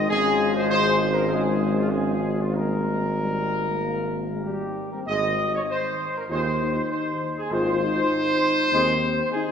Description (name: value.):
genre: classical.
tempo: 97 BPM.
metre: 4/4.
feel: uneven beats.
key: Ab major.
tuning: A4 = 440 Hz.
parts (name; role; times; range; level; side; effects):
dark trumpet section; melody; 0.0-9.5 s; F4 to Eb5; -24 LUFS; equal; none.
dark French horn section; sustained chords; 0.0-9.5 s; G3 to F4; -28 LUFS; left 3 dB; none.
warm trombone section; sustained chords; 0.0-8.9 s; Eb3 to Ab3; -32 LUFS; right 1 dB; none.
mellow tuba; bass; 0.0-9.2 s; Ab1 to Eb2; -27 LUFS; right 1 dB; none.
room: wet church reverb, RT60 3.4 s.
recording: none.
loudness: -21 LUFS.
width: side -7 dB against mid.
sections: 0.0-5.1 A section; 5.1-9.5 B section.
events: none.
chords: 0.1 Db/Ab; 2.5 Eb/Ab; 5.1 Ab.